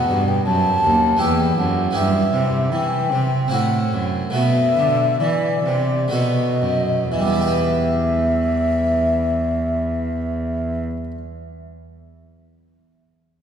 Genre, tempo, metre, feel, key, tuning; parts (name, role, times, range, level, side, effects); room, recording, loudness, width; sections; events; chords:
classical, baroque-style sonata movement with continuo; 59-81 BPM; 3/4; straight; E minor; A4 = 440 Hz
mellow baroque flute; melody; 0.0-10.8 s; D5 to A5; -21 LUFS; left 2 dB
harpsichord; accompaniment; 0.0-11.2 s; D#2 to B4; -23 LUFS; right 2 dB
dark cello; bass; 0.0-10.8 s; D#2 to E3; -21 LUFS; right 1 dB
wet church reverb, RT60 3.0 s; recorded in a church or concert hall; -17 LUFS; side -8 dB against mid
0.0-7.1 A section; 7.1-10.1 B section
slowing down 0.8-7.1
0.0 B7; 1.2 Em; 2.0 Em/G; 3.5 F#m7b5/A; 4.4 B7sus4; 6.1 B7; 7.1 Em